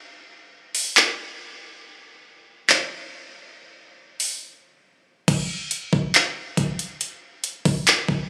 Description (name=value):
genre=hip hop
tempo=139 BPM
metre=4/4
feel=half-time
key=none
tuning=none
part: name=smooth R&B drum kit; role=drums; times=0.7-8.2 s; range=crash cymbal, handclaps, hi-hat, kick drum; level=-22 LUFS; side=equal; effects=none
room=light reverb, digital ambience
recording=recorded on a phone in the room, studio reverb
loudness=-22 LUFS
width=mono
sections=0.0-5.3 A section; 5.3-8.3 B section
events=break 4.4-5.3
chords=none